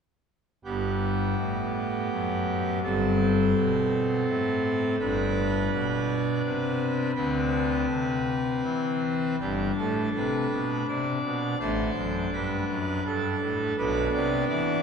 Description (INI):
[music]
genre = classical, chorale-style piece for pipe organ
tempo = 83 BPM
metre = 3/4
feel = rubato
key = G major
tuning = A4 = 436 Hz
[part]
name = pipe organ, full organ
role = solo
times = 0.6-14.8 s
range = G1 to D5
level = -24 LUFS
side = equal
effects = none
[sound]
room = wet church reverb, RT60 3.4 s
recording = recorded in a church or concert hall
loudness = -24 LUFS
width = side -6 dB against mid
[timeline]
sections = 0.6-9.4 A section; 9.4-14.8 B section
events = none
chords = 0.6 G; 2.8 Am7/G; 5.0 G; 7.2 Dsus2; 9.4 G; 11.6 D7/A; 13.8 Bmadd11